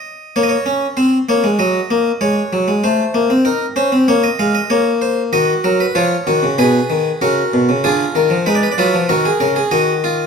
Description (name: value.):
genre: classical, baroque-style 3-part fugue for harpsichord.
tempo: 96 BPM.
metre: 4/4.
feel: straight.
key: Eb minor.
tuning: A4 = 440 Hz.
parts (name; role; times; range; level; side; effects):
harpsichord; solo; 0.0-10.3 s; Cb3 to F5; -13 LUFS; equal; none.
room: wet stone room reverb, RT60 1.2 s.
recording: minimal, uncompressed stereo recording.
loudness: -13 LUFS.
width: side -6 dB against mid.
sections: 0.0-10.3 A section.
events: none.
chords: 0.4 Bbm; 1.6 Ebm/Gb; 2.8 Adim; 4.1 Bbm; 5.3 Ebm; 6.6 Abm/Cb; 7.8 Bb7/D; 9.1 Ebm.